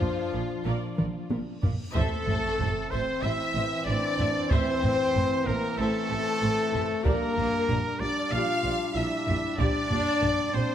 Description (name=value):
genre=cinematic, epic orchestral film score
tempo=94 BPM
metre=4/4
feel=straight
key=unclear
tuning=A4 = 439 Hz
part: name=warm studio violin section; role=melody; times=0.0-10.7 s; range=F4 to F5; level=-35 LUFS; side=left 2 dB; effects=none
part: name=mellow small flute group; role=second line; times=0.0-1.3 s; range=F4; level=-46 LUFS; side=left 2 dB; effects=none
part: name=warm symphonic violin section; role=second line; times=0.0-10.7 s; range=F4 to F5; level=-36 LUFS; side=left 2 dB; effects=none
part: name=dark symphonic viola section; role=accompaniment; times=0.0-10.6 s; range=D4 to E5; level=-38 LUFS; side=equal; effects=none
part: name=bright trombone section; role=sustained chords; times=0.0-10.7 s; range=E3 to D4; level=-36 LUFS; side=right 4 dB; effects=none
part: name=mellow French horn section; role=sustained chords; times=0.0-10.7 s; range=F3 to F4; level=-30 LUFS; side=left 3 dB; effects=none
part: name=rich symphonic cello section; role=bass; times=0.0-10.6 s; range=A2 to Bb2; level=-35 LUFS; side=right 3 dB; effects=none
part: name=rich symphonic double bass section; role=bass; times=0.0-10.6 s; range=A1 to Bb1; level=-34 LUFS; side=right 3 dB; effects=none
part: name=taiko ensemble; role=drums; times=0.0-10.5 s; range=none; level=-30 LUFS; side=equal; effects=none
part: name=reverse cymbal and sub drop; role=sound effects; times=1.7-4.5 s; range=none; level=-40 LUFS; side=equal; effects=none
part: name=bright trumpet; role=stabs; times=1.9-10.7 s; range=A4 to F5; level=-32 LUFS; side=right 2 dB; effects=none
room=moderate scoring stage reverb, RT60 1.8 s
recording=none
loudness=-24 LUFS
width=side -10 dB against mid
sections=0.0-1.9 A section; 1.9-10.7 B section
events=drum fill 1.0-1.9; reverse cymbal 1.7; impact 1.9-4.5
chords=0.0 Bb; 1.9 Am; 7.0 Gm/Bb